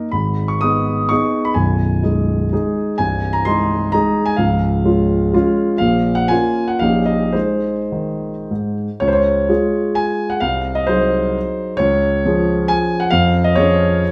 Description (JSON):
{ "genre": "classical, romantic triple-time dance for piano with dotted rhythms", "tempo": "98-145 BPM", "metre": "3/4", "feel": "rubato", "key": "Db major", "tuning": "A4 = 440 Hz", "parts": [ { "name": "warm concert grand piano", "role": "solo", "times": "0.0-14.1 s", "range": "Cb1 to Eb6", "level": "-17 LUFS", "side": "equal", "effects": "none" } ], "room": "wet stone room reverb, RT60 1.1 s", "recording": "none", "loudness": "-17 LUFS", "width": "mono", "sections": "0.0-9.0 A section; 9.0-14.1 B section", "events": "none", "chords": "0.1 Abm; 1.6 Abm/Cb; 3.0 Ab/C; 4.4 Db; 5.8 Bbm; 6.8 Eb7/Bb; 7.3 Ab; 9.0 Db; 10.4 Ab7/C; 11.8 Db; 13.1 Db/F", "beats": "| 0.12 0.61 1.10 | 1.56 2.04 2.52 | 2.99 3.46 3.93 | 4.38 4.84 5.33 | 5.80 6.29 6.81 | 7.34 7.92 8.51 | 9.02 9.49 9.97 | 10.43 10.89 11.36 | 11.80 12.26 12.71 | 13.13 13.57 14.02" }